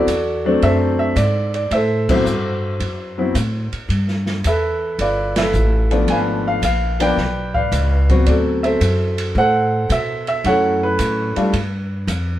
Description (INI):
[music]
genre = jazz piano trio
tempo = 110 BPM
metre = 4/4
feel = swing 68% on 8ths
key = D mixolydian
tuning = A4 = 440 Hz
[part]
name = warm concert grand piano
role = melody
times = 0.0-12.4 s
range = F3 to G#5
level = -18 LUFS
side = equal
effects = none
[part]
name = upright bass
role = bass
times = 0.0-12.4 s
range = G1 to B2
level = -20 LUFS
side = equal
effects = none
[part]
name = open jazz drum kit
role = drums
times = 0.1-12.3 s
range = crash cymbal, hi-hat, kick drum, ride cymbal, snare drum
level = -27 LUFS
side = right 1 dB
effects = none
[sound]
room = wet studio reverb, RT60 0.6 s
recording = band playing live in one room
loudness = -16 LUFS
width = side -13 dB against mid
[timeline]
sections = 0.0-12.4 A section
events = band accent 2.0, 5.3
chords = 0.0 D9; 3.9 G13; 6.1 G#dim7; 8.3 D13; 10.4 F#m7; 11.5 G7